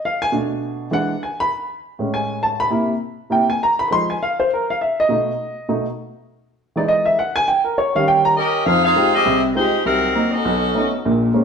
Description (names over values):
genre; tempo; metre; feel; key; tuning
jazz; 202 BPM; 4/4; swing 61% on 8ths; unclear; A4 = 440 Hz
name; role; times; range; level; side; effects
warm upright piano; accompaniment; 0.1-11.4 s; Bb1 to C6; -17 LUFS; right 1 dB; none
warm saxophone section; melody; 8.4-10.9 s; Gb3 to F5; -17 LUFS; left 1 dB; none
room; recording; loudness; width
wet stone room reverb, RT60 1.1 s; band playing live in one room; -16 LUFS; side -6 dB against mid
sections
0.0-8.7 A section; 8.7-11.4 B section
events
upright piano solo 0.0-8.7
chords
0.3 Bm7; 0.9 E9; 1.5 Amaj7; 2.7 C7; 3.9 Fm7; 5.1 B7; 6.3 Emaj7; 7.5 Eb7; 8.7 Fm9; 9.8 Cm7b5; 10.4 B9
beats
0.02 | 0.32 0.61 0.91 1.21 | 1.51 1.81 2.11 2.40 | 2.70 3.00 3.30 3.60 | 3.90 4.19 4.49 4.79 | 5.09 5.38 5.68 5.98 | 6.28 6.58 6.87 7.17 | 7.47 7.77 8.06 8.36 | 8.66 8.96 9.25 9.55 | 9.85 10.15 10.44 10.74 | 11.04 11.34